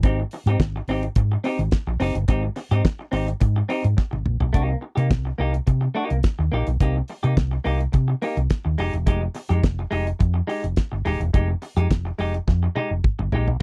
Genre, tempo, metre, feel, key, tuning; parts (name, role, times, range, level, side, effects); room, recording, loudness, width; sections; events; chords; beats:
disco; 106 BPM; 4/4; straight; A4 = 440 Hz
clean electric guitar; accompaniment; 0.0-13.6 s; Ab3 to G4; -29 LUFS; equal
fingered electric bass; bass; 0.0-13.6 s; Eb1 to C3; -24 LUFS; equal
damped 70s drum kit; drums; 0.0-13.6 s; hi-hat, kick drum, snare drum, toms; -23 LUFS; equal
little or no reverb; dry, close 1970s-style studio recording; -23 LUFS; mono
0.0-4.5 A section; 4.5-13.6 B section
drum fill 4.0-4.5, 12.5-13.6
0.0 Abmaj7; 4.5 Cm7; 8.8 Fm9
| 0.03 0.60 1.16 1.72 | 2.29 2.85 3.42 3.98 | 4.54 5.11 5.67 6.24 | 6.81 7.37 7.94 8.51 | 9.07 9.64 10.21 10.77 | 11.34 11.91 12.47 13.04 | 13.61